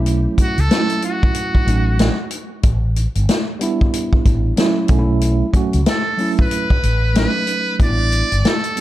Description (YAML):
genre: hip hop, jazz-hop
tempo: 93 BPM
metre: 4/4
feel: swing 61% on 16ths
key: unclear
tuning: A4 = 441 Hz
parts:
  - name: mellow tine electric piano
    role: accompaniment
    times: 0.0-8.8 s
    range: F#3 to F#4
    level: -21 LUFS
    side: right 3 dB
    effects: medium stereo tremolo
  - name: mellow fretless electric bass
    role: bass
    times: 0.0-8.4 s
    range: G1 to C#2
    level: -17 LUFS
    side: equal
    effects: lush chorus
  - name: vintage drum kit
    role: drums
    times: 0.1-8.8 s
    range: hi-hat, kick drum, snare drum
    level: -18 LUFS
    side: equal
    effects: none
  - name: trumpet with metal mute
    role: melody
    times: 0.4-8.8 s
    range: F#4 to D5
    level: -22 LUFS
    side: right 1 dB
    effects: none
room: small room ambience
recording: dark, warm production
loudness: -14 LUFS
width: side -14 dB against mid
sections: 0.0-8.8 A section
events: none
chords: 0.0 B9sus4 (rootless); 2.6 A9sus4; 4.9 B9sus4; 7.8 A9sus4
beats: | 0.06 0.70 1.35 1.99 | 2.64 3.29 3.93 4.58 | 5.22 5.87 6.51 7.16 | 7.80 8.45